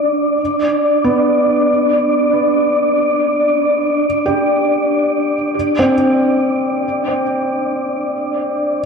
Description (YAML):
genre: ambient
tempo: free time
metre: none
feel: none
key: unclear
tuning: A4 = 442 Hz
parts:
  - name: felt-muted upright piano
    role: arpeggios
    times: 0.0-8.9 s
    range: B3 to G4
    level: -19 LUFS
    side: right 1 dB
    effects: analog delay
  - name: wind-like tuned noise texture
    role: texture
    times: 0.0-8.9 s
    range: D4 to D5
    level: -15 LUFS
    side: equal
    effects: built-in reverb
room: wet spring reverb, RT60 2.2 s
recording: echo-heavy mix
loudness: -13 LUFS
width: side -5 dB against mid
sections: 0.0-8.9 A section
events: fade-in on felt piano 0.0-8.9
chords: 0.4 Bm; 5.5 G5